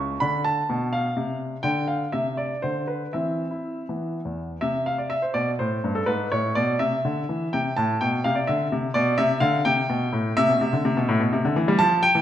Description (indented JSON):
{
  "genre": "classical-period piano sonatina",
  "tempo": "84 BPM (dotted quarters)",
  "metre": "6/8",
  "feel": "straight",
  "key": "unclear",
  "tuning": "A4 = 439 Hz",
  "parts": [
    { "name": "clear baby grand piano", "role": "solo", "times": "0.0-12.2 s", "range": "C#2 to C#6", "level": "-21 LUFS", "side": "equal", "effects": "none" }
  ],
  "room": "wet recital hall reverb, RT60 1.3 s",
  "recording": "none",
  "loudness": "-21 LUFS",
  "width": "side -11 dB against mid",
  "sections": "0.0-4.6 A section; 4.6-12.2 B section",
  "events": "none",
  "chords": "0.2 Dm; 1.6 Cmaj9; 3.1 C/E; 3.9 E5; 4.6 Am/C; 6.1 Bm13/G#; 6.8 Cadd9; 7.5 C; 9.0 Dm13/B; 9.7 C5; 10.4 Am (rootless)"
}